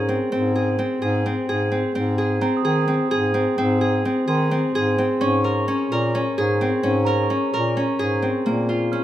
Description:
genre	contemporary instrumental, chamber music in an uneven meter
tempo	258 BPM (eighths)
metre	7/8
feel	straight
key	Ab major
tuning	A4 = 437 Hz
part	Celtic harp	arpeggios	0.0-9.0 s	Bb3 to Bb4	-21 LUFS	equal	none
part	warm bass clarinet	bass	0.0-9.0 s	Ab2 to Eb3	-24 LUFS	equal	none
part	glockenspiel with rubber mallets	texture	2.4-9.0 s	Bb5 to F6	-29 LUFS	right 5 dB	none
room	moderate recital hall reverb, RT60 1.7 s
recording	minimal, uncompressed stereo recording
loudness	-19 LUFS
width	side -12 dB against mid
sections	0.0-8.5 A section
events	none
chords	0.3 Ab; 5.2 Absus24; 8.5 Bbm7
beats	0.09 | 0.32 0.55 0.79 1.02 1.25 1.48 1.72 | 1.95 2.18 2.42 2.65 2.88 3.11 3.35 | 3.58 3.81 4.04 4.28 4.51 4.74 4.97 | 5.21 5.44 5.67 5.91 6.14 6.37 6.60 | 6.83 7.07 7.30 7.53 7.76 8.00 8.23 | 8.46 8.70 8.93

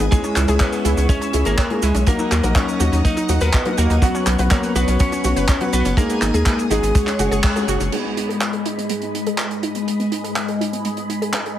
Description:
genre	italo disco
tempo	123 BPM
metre	4/4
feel	straight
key	unclear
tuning	A4 = 441 Hz
part	string machine, full ensemble	sustained chords	0.0-11.6 s	G#3 to E6	-26 LUFS	left 1 dB	phaser, ensemble chorus
part	analog pluck	arpeggios	0.0-11.6 s	G#3 to D#5	-27 LUFS	right 3 dB	chorus, ping-pong delay
part	warm baby grand piano	stabs	0.0-11.6 s	F#3 to G#4	-24 LUFS	left 3 dB	none
part	round analog bass	bass	0.0-7.9 s	F#1 to D#2	-19 LUFS	equal	tube saturation
part	damped 70s drum kit	drums	0.0-11.6 s	cabasa, crash cymbal, handclaps, hi-hat	-25 LUFS	right 1 dB	none
part	lightly driven lead guitar	melody	0.1-7.6 s	F#3 to D#5	-23 LUFS	equal	ping-pong delay
part	kick drum	drums	0.1-7.5 s	none	-17 LUFS	equal	none
room	light reverb, small room ambience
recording	heavily compressed radio sound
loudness	-16 LUFS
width	side -11 dB against mid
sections	0.0-7.9 A section; 7.9-11.6 B section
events	band accent 7.4; filter sweep on synth arpeggio sound 7.9-11.6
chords	0.1 C#m; 2.1 D#m; 4.0 Bsus2; 6.0 G#m; 6.9 F#sus2; 7.9 G#m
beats	| 0.12 0.61 1.10 1.58 | 2.07 2.56 3.05 3.54 | 4.02 4.51 5.00 5.49 | 5.97 6.46 6.95 7.44 | 7.92 8.41 8.90 9.39 | 9.88 10.36 10.85 11.34

